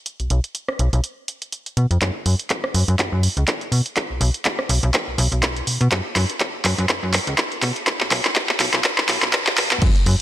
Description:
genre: filtered disco house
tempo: 123 BPM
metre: 4/4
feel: swing 56% on 16ths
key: unclear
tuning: A4 = 441 Hz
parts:
  - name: punchy analog drum machine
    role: drums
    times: 0.1-10.2 s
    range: crash cymbal, handclaps, hi-hat, rim click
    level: -20 LUFS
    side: equal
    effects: sidechain pumping on hats, sidechain pumping on cymbals
  - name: slap-like FM bass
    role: bass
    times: 0.2-10.2 s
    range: B1 to B2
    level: -19 LUFS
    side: equal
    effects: sidechain pumping, low-pass filter
  - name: electronic kick drum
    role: drums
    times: 2.0-9.9 s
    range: none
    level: -25 LUFS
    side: equal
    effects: high-pass filter on kick, high-pass filter on room
room: moderate lush hall reverb, RT60 1.6 s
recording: high-pass filter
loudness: -18 LUFS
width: side -13 dB against mid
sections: 0.0-2.0 A section; 2.0-9.8 B section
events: filter sweep on FM bass 0.0-2.0, 2.0-9.8; build-up 2.0-9.8; drum fill 2.0-9.8; filter sweep 2.0-9.8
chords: none

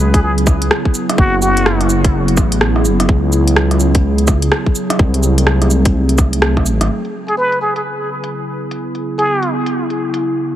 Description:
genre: future garage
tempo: 126 BPM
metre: 4/4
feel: swing 62% on 16ths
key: C# minor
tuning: A4 = 443 Hz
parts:
  - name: warbly tape-like pad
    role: sustained chords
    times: 0.0-10.6 s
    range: C#3 to G#4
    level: -18 LUFS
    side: right 1 dB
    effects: chorus, built-in reverb, sidechain pumping
  - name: dark detuned saw bass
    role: bass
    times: 0.0-6.9 s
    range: F#1 to C#2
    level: -14 LUFS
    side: equal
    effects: sidechain pumping
  - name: trumpet with plunger mute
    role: melody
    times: 0.1-1.9, 7.3-9.5 s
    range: F#4 to B4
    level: -19 LUFS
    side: equal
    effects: analog delay
  - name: electronic kick drum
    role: drums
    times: 0.1-6.6 s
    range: none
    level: -13 LUFS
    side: equal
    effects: none
  - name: organic electronic drum kit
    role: drums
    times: 0.1-10.2 s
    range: cabasa, hi-hat, rim click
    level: -19 LUFS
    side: equal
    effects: low-pass filter on hats, low-pass filter on snare, low-pass filter on perc, low-pass filter on room
room: light reverb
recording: heavily compressed radio sound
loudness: -12 LUFS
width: side -12 dB against mid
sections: 0.0-6.9 A section; 6.9-10.6 B section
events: none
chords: 0.0 C#m7; 1.2 F#m7; 3.1 C#m7; 5.0 G#7b9/B#; 6.9 C#m7

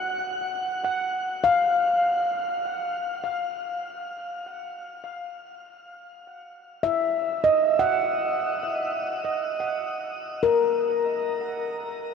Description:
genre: ambient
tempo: free time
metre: none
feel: none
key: unclear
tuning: A4 = 441 Hz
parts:
  - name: handpan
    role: solo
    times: 0.0-12.1 s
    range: A#4 to F#5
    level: -24 LUFS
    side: left 1 dB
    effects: tape echo
room: wet shimmer reverb, RT60 8.4 s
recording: cassette tape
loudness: -23 LUFS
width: side -6 dB against mid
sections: 0.0-12.1 A section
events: none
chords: 0.0 N.C.; 6.8 D#m; 10.4 F#7

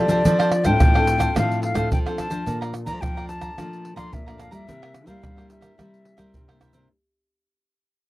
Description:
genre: samba and choro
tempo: 108 BPM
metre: 4/4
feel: straight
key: unclear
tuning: A4 = 440 Hz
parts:
  - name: reedy concert flute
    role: melody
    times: 0.0-6.6 s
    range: D5 to C6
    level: -25 LUFS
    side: left 2 dB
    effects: none
  - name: cavaquinho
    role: accompaniment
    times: 0.0-6.9 s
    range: D4 to Bb5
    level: -32 LUFS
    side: right 5 dB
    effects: none
  - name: nylon-string guitar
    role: accompaniment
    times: 0.0-6.9 s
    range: F2 to A4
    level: -30 LUFS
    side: left 3 dB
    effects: none
  - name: nylon-string guitar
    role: bass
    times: 0.0-6.9 s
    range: A2 to G3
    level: -25 LUFS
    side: equal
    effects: none
  - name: egg shaker, pandeiro, surdo and tamborim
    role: percussion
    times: 0.1-6.9 s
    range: none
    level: -22 LUFS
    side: right 1 dB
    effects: none
room: little or no reverb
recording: dry, close 1970s-style studio recording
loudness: -18 LUFS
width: side -17 dB against mid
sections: 0.0-6.9 A section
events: fade-out 0.0-6.9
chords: 0.3 Dm7; 2.5 Bbmaj7; 4.7 C7

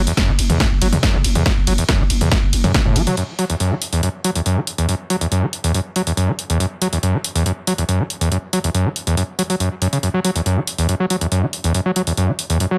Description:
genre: driving peak-time techno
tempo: 140 BPM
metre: 4/4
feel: straight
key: unclear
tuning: A4 = 440 Hz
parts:
  - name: growling 808-style bass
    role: bass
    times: 0.0-3.1 s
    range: F#1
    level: -23 LUFS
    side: equal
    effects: tube saturation, sidechain pumping, low-pass filter
  - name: screaming distorted acid line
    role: riff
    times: 0.1-12.8 s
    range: E2 to F#3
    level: -21 LUFS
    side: equal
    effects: distortion, chorus, sidechain pumping, delay
  - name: punchy analog drum machine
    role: drums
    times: 0.1-12.7 s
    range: hi-hat, ride cymbal, snare drum, toms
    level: -24 LUFS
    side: equal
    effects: none
  - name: electronic kick drum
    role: drums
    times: 0.2-2.8 s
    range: none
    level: -21 LUFS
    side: equal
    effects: none
room: light reverb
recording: none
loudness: -19 LUFS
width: mono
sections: 0.0-3.2 A section; 3.2-12.8 B section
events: drop 0.0-3.2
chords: none

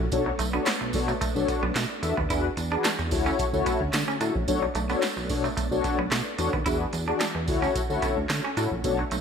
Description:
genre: early-eighties boogie funk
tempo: 110 BPM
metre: 4/4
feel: straight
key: B dorian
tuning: A4 = 439 Hz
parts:
  - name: soft string machine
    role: sustained chords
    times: 0.0-9.2 s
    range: D3 to G#4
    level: -35 LUFS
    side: equal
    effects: phaser, ensemble chorus
  - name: chorused synth bass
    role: bass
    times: 0.0-9.2 s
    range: A#1 to D3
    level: -30 LUFS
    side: right 1 dB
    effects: none
  - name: mellow synth brass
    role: accompaniment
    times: 0.1-9.0 s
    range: D4 to E5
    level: -28 LUFS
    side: left 4 dB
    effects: chorus
  - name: electro analog drum machine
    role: drums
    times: 0.1-9.2 s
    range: handclaps, hi-hat, kick drum, snare drum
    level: -30 LUFS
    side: right 1 dB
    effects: gated reverb
  - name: tambourine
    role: percussion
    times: 0.1-9.2 s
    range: none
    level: -39 LUFS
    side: right 9 dB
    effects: none
  - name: semi-hollow electric guitar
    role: riff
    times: 0.3-9.2 s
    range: A3 to E4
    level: -33 LUFS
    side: right 4 dB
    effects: tube saturation, wide subtle chorus
room: light reverb, digital ambience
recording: none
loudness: -24 LUFS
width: side -6 dB against mid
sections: 0.0-9.2 A section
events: none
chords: 0.1 Bm7; 2.3 E9; 3.1 Dmaj7; 4.5 Bm7; 6.7 E9; 7.5 Dmaj7

